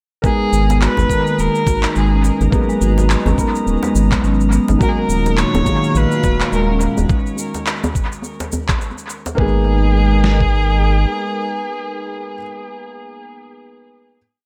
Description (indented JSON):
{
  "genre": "organic downtempo",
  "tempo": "105 BPM",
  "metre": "4/4",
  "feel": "swing 58% on 16ths",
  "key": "G# dorian",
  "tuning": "A4 = 435 Hz",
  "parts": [
    { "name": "bright kamancheh", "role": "melody", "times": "0.2-12.4 s", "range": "G#4 to C#5", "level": "-26 LUFS", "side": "equal", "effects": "tape echo" },
    { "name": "felt-muted upright piano", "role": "accompaniment", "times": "0.2-14.2 s", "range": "A#2 to A#4", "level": "-27 LUFS", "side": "equal", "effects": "sidechain pumping, analog delay" },
    { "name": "warm analog pad", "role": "sustained chords", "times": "0.2-12.4 s", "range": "A#2 to A#5", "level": "-27 LUFS", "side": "equal", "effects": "chorus, sidechain pumping" },
    { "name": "marimba with medium mallets", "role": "arpeggios", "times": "0.2-9.6 s", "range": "D#3 to F#4", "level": "-24 LUFS", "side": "equal", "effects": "low-pass filter, dub echo" },
    { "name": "dusty soul sampler-style drum kit", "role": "drums", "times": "0.2-10.5 s", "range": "kick drum, snare drum", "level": "-21 LUFS", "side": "equal", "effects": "none" },
    { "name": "electronic cabasa and handclaps", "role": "drums", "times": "0.2-9.4 s", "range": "none", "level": "-28 LUFS", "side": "equal", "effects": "analog delay" },
    { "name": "drifting glass-harmonics texture", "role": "texture", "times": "1.5-7.1 s", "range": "D#4 to D#5", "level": "-36 LUFS", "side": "equal", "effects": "none" },
    { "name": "round analog bass", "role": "bass", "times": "0.5-11.1 s", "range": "D#1 to A#1", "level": "-18 LUFS", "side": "equal", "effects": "sidechain pumping" },
    { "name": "djembe", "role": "percussion", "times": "0.7-9.4 s", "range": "none", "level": "-28 LUFS", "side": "equal", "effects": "analog delay" }
  ],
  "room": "light reverb, studio ambience",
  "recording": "echo-heavy mix",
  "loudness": "-16 LUFS",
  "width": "mono",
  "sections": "0.2-9.4 groove; 9.4-11.7 final chord",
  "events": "none",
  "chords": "0.2 G#madd9; 4.8 D#m; 9.4 G#madd9"
}